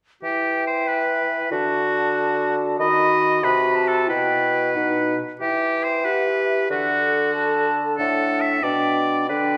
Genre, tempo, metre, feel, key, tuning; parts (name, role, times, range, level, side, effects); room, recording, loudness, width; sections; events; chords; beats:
classical, dramatic, fast romantic movement for symphony orchestra; 93 BPM (dotted quarters); 6/8; rubato; E minor; A4 = 438 Hz
bright oboe; second line; 0.2-9.6 s; F#4 to E5; -24 LUFS; equal
mellow concert flute; second line; 0.2-9.6 s; E5 to B5; -28 LUFS; equal
warm clarinet; second line; 0.2-9.6 s; D4 to A4; -28 LUFS; equal
warm bassoon; accompaniment; 0.2-9.6 s; A2 to E3; -27 LUFS; equal
wet scoring stage reverb, RT60 1.5 s; -21 LUFS; mono
0.2-9.6 A section
0.2 Em; 1.5 D; 2.8 B/D#; 4.1 Em/B; 5.4 Em; 6.7 D; 8.0 D/A; 8.6 G/B
| 0.23 0.88 | 1.51 2.15 | 2.79 3.43 | 4.08 4.75 | 5.41 6.06 | 6.70 7.34 | 7.98 8.62 | 9.29